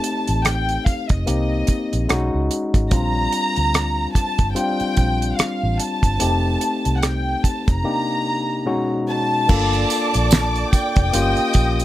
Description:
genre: lush 1970s-style soul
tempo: 73 BPM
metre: 4/4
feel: swing 58% on 16ths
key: Bb major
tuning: A4 = 439 Hz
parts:
  - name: dark studio violin section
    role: melody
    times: 0.0-11.8 s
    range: Eb5 to Bb5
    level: -24 LUFS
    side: equal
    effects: none
  - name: barky tine electric piano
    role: accompaniment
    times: 0.0-11.8 s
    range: B2 to A4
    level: -23 LUFS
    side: left 3 dB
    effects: overdrive
  - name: damped 70s drum kit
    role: drums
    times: 0.0-11.8 s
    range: crash cymbal, hi-hat, kick drum, rim click, snare drum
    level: -19 LUFS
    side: right 1 dB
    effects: none
  - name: vintage muted fingered electric bass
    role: bass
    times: 0.3-11.8 s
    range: F1 to D2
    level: -22 LUFS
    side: equal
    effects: none
  - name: warm studio string section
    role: second line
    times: 9.5-11.8 s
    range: D5 to Eb6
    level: -26 LUFS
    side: right 2 dB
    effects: none
  - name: tambourine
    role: percussion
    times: 9.5-11.8 s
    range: none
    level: -32 LUFS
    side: right 6 dB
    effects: none
room: little or no reverb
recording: none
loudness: -17 LUFS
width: side -14 dB against mid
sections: 0.0-9.5 A section; 9.5-11.8 B section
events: none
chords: 0.0 F7; 1.3 Cm7; 2.1 B69; 2.9 Bb69; 6.2 F7; 7.8 Cm9; 8.7 B69; 9.5 Gm7; 11.1 Eb7/G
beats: 0.45 1.27 2.09 | 2.92 3.74 4.56 5.38 | 6.21 7.03 7.85 8.67 | 9.49 10.31 11.14

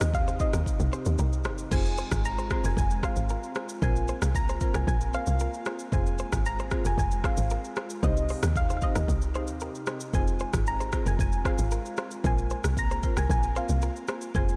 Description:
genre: afrobeats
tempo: 114 BPM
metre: 4/4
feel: straight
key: F minor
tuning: A4 = 440 Hz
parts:
  - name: soft round pluck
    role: melody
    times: 0.0-14.6 s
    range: Eb5 to Bb5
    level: -37 LUFS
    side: equal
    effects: chorus, analog delay
  - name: marimba with medium mallets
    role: accompaniment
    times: 0.0-14.6 s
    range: C4 to C5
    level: -40 LUFS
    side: equal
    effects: none
  - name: airy breathy pad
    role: sustained chords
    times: 0.0-14.6 s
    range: C3 to G4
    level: -43 LUFS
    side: equal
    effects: chorus
  - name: direct-recorded clean electric guitar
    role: riff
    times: 0.0-14.2 s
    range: Eb4 to C5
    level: -43 LUFS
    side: equal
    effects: analog delay
  - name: woody log drum bass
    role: bass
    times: 0.0-14.6 s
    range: F1 to Eb2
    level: -30 LUFS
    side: equal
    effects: none
  - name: afro-pop drum kit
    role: drums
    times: 0.0-14.6 s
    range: crash cymbal, hi-hat, kick drum, rim click, shaker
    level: -32 LUFS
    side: equal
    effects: vintage 12-bit sampler grit
room: light reverb, digital ambience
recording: none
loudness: -28 LUFS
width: mono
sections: 0.0-1.7 A section; 1.7-14.6 A section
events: none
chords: 0.0 Cm; 1.7 Fm; 3.8 Bbsus2; 5.9 Fm; 8.0 Cm; 10.1 Fm; 12.2 Bbsus2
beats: 0.14 0.66 1.19 | 1.72 2.24 2.77 3.29 | 3.82 4.35 4.87 5.40 | 5.93 6.45 6.98 7.51 | 8.03 8.56 9.09 9.61 | 10.14 10.66 11.19 11.72 | 12.24 12.77 13.29 13.82 | 14.35

